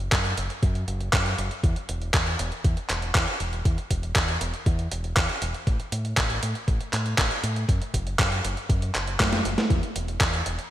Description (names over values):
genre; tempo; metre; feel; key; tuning
italo disco; 119 BPM; 4/4; straight; unclear; A4 = 439 Hz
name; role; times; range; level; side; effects
fingered electric bass with an envelope filter; bass; 0.0-10.6 s; E1 to A2; -29 LUFS; equal; none
dusty soul sampler-style drum kit; drums; 0.0-10.7 s; handclaps, hi-hat, snare drum; -26 LUFS; equal; overdrive, gated reverb
electronic kick drum; drums; 0.1-10.3 s; none; -24 LUFS; equal; none
room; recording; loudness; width
light reverb; bright 1980s-style digital production; -23 LUFS; side -13 dB against mid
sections
0.0-10.7 A section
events
drum fill 9.2-9.7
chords
none